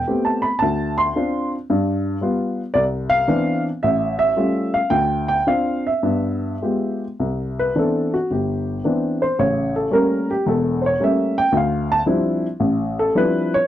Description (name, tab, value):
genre	solo jazz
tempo	111 BPM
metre	4/4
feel	swing 69% on 8ths, rubato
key	C major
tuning	A4 = 440 Hz
part	warm upright piano	solo	0.0-13.7 s	E1 to C6	-18 LUFS	equal	none
room	little or no reverb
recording	dry, close 1970s-style studio recording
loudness	-18 LUFS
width	side -12 dB against mid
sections	0.0-7.2 A section; 7.2-13.7 B section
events	upright piano solo 7.2-13.7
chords	0.0 Am9; 0.6 Dm7; 1.7 G7; 2.8 Cmaj9; 3.8 A7b13; 4.9 Dm7; 6.0 G7b9; 7.2 Cmaj9; 9.4 A7b9; 11.5 Dm11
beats	0.08 | 0.62 1.16 1.69 2.22 | 2.76 3.30 3.84 4.38 | 4.92 5.47 6.03 6.62 | 7.19 7.75 8.30 8.85 | 9.39 9.93 10.47 11.01 | 11.54 12.07 12.61 13.16